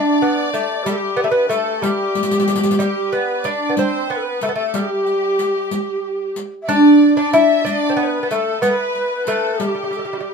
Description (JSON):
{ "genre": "Persian modal ensemble", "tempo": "62 BPM (dotted quarters)", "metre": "6/8", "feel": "straight", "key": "G dastgah mahur", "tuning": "A4 = 440 Hz", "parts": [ { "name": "lute", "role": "melody", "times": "0.0-10.3 s", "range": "G3 to E4", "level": "-17 LUFS", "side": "right 1 dB", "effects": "none" }, { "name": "breathy mellow low ney", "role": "second line", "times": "0.0-10.3 s", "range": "F#4 to E5", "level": "-24 LUFS", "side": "left 4 dB", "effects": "none" }, { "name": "bright studio violin section", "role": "second line", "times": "0.0-10.3 s", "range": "G4 to E5", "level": "-26 LUFS", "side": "equal", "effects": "none" }, { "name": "riq", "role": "percussion", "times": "0.5-10.0 s", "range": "none", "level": "-24 LUFS", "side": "left 2 dB", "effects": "none" } ], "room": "light reverb", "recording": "band playing live in one room", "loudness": "-15 LUFS", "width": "side -5 dB against mid", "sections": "0.0-10.3 A section", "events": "drum fill 2.2-2.8", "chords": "none", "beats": "| 0.86 1.83 | 2.80 3.77 | 4.74 5.71 | 6.69 7.66 | 8.63 9.60" }